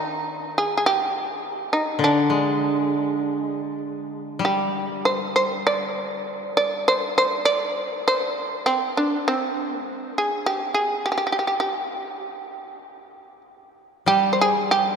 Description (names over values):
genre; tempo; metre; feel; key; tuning
japanese traditional, Japanese chamber music; 50 BPM; 2/4; rubato; G miyako bushi; A4 = 439 Hz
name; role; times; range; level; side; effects
shamisen; melody; 0.0-15.0 s; C4 to D5; -21 LUFS; right 1 dB; none
koto; accompaniment; 0.0-7.8, 14.1-15.0 s; D3 to Ab3; -25 LUFS; left 1 dB; none
room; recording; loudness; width
wet cathedral reverb, RT60 5.0 s; in a vast, echoing space; -20 LUFS; side -6 dB against mid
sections
0.0-14.1 A section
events
none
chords
none